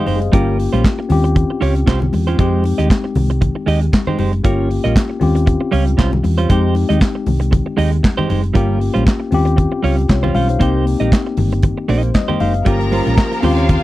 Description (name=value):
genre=disco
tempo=117 BPM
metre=4/4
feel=swing 56% on 16ths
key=F minor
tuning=A4 = 437 Hz
part: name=clean electric guitar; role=accompaniment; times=0.0-13.7 s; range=G3 to Eb5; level=-20 LUFS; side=right 5 dB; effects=none
part: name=tine electric piano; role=accompaniment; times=0.0-13.8 s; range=Ab3 to F5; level=-20 LUFS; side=left 5 dB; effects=none
part: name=hollow-body short-scale fingered electric bass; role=bass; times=0.1-13.8 s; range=Gb1 to F2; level=-16 LUFS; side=equal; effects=none
part: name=modern studio drum kit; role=drums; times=0.1-13.8 s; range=handclaps, hi-hat, kick drum, snare drum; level=-14 LUFS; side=equal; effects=none
part: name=congas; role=percussion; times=0.1-13.8 s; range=none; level=-23 LUFS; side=left 3 dB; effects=none
part: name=clear studio string section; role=second line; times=12.7-13.8 s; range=F4 to Bb5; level=-22 LUFS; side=equal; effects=none
part: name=clear studio string section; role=sustained chords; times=12.7-13.8 s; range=Db3 to C5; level=-26 LUFS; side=right 1 dB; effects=none
room=little or no reverb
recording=dry, close 1970s-style studio recording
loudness=-13 LUFS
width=side -16 dB against mid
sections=0.0-12.7 A section; 12.7-13.8 B section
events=tine electric piano fill 0.0-0.3, 11.6-12.7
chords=0.3 Gm7b5; 1.1 Eb13; 2.4 Fm9; 4.4 Gm7b5; 5.2 Eb13; 6.5 Fm9; 8.6 Gm7b5; 9.3 Eb13; 10.6 Cm7; 12.7 Gm7b5